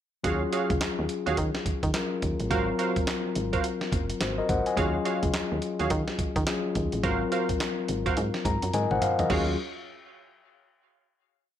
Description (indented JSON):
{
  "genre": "R&B, new jack swing",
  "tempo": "106 BPM",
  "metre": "4/4",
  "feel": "swing 62% on 16ths",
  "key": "Eb dorian",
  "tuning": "A4 = 439 Hz",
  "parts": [
    { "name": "mellow tine electric piano", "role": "accompaniment", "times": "0.2-9.6 s", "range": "Gb3 to Bb5", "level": "-29 LUFS", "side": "left 4 dB", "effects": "none" },
    { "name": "funky polysynth comp", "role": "stabs", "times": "0.2-9.5 s", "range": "Gb4 to F5", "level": "-32 LUFS", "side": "right 6 dB", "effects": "chorus, ping-pong delay" },
    { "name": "solid FM bass", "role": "bass", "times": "0.2-9.6 s", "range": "Gb1 to Eb3", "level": "-31 LUFS", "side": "right 1 dB", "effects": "none" },
    { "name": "dusty soul sampler-style drum kit", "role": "drums", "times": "0.2-9.5 s", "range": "crash cymbal, handclaps, hi-hat, kick drum, snare drum, toms", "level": "-31 LUFS", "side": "right 1 dB", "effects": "none" }
  ],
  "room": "light reverb",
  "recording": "none",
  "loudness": "-25 LUFS",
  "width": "side -10 dB against mid",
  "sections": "0.2-9.3 verse; 9.3-11.6 final chord",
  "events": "tine electric piano fill 8.2-9.3; drum fill 8.7-9.3",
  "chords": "0.2 Ebm11; 2.5 Ab13; 4.8 Ebm11; 7.0 Ab13; 9.3 Ebm11",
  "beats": "| 0.24 0.81 1.38 1.94 | 2.51 3.07 3.64 4.21 | 4.77 5.34 5.90 6.47 | 7.04 7.60 8.17 8.73 | 9.30"
}